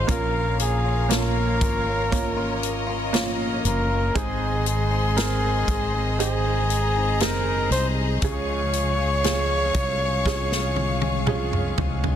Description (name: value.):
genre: pop ballad.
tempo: 59 BPM.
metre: 4/4.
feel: straight.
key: Db major.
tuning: A4 = 440 Hz.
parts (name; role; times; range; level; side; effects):
clear flugelhorn; melody; 0.0-11.7 s; Ab4 to Db5; -26 LUFS; equal; none.
clear upright piano; accompaniment; 0.0-12.2 s; Ab2 to Bb4; -30 LUFS; right 8 dB; none.
clear studio string section; sustained chords; 0.0-12.2 s; Ab4 to Db6; -31 LUFS; left 3 dB; none.
direct-recorded clean electric guitar; arpeggios; 0.0-12.2 s; Ab2 to Ab4; -32 LUFS; left 9 dB; spring reverb.
mellow fretless electric bass; bass; 0.0-12.2 s; Gb1 to C2; -26 LUFS; equal; none.
natural country drum kit; drums; 0.1-12.2 s; hi-hat, kick drum, snare drum, toms; -26 LUFS; left 1 dB; none.
room: light reverb, small room ambience.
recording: dense, heavily limited modern master.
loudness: -20 LUFS.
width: side -9 dB against mid.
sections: 0.0-12.2 A section.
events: drum fill 10.3-12.2.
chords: 0.1 Bbm; 4.2 Ab; 8.2 Db.